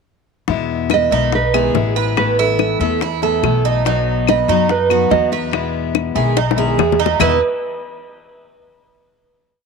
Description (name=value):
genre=latin, Cuban son and guajira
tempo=143 BPM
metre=4/4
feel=straight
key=E major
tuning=A4 = 435 Hz
part: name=picked steel-string acoustic guitar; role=accompaniment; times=0.5-7.4 s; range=E2 to F#4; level=-21 LUFS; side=left 13 dB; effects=none
part: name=upright bass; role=bass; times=0.5-7.4 s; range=A1 to F#2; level=-21 LUFS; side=left 2 dB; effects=none
part: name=bongos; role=percussion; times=0.5-7.3 s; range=none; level=-20 LUFS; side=left 16 dB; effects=none
part: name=nylon-string guitar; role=melody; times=0.9-7.4 s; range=A4 to E5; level=-18 LUFS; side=right 6 dB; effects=none
part: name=Cuban tres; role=arpeggios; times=0.9-7.4 s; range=D#4 to D#5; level=-19 LUFS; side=right 9 dB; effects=none
part: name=claves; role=percussion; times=0.9-7.3 s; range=none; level=-24 LUFS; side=left 17 dB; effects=none
room=moderate spring reverb, RT60 2.5 s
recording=1960s-style stereo with parts hard left and right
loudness=-14 LUFS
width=side -4 dB against mid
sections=0.5-7.2 A section; 7.2-8.9 final chord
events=drum fill 6.4-7.2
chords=0.5 Emaj7; 2.2 Asus2; 3.9 B; 5.5 Emaj7; 7.2 Emaj7(no3)